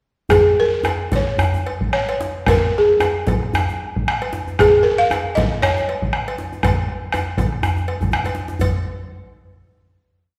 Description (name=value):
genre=west african traditional, West African drum ensemble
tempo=110-131 BPM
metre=4/4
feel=swing 56% on 16ths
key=Db major pentatonic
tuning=A4 = 440 Hz
part: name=balafon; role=melody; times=0.3-8.1 s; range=Ab4 to F5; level=-19 LUFS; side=equal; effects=none
part: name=bombo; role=percussion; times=0.3-8.8 s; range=none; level=-24 LUFS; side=equal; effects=none
part: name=cowbell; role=percussion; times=0.3-8.8 s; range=none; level=-32 LUFS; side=equal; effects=none
part: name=djembe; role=percussion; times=0.3-8.8 s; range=none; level=-26 LUFS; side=equal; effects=none
room=wet recital hall reverb, RT60 1.6 s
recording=recorded in a church or concert hall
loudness=-19 LUFS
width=mono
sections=0.3-8.6 A section; 8.6-10.4 final hit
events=speeding up 0.3-10.4; drum fill 8.0-8.6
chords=none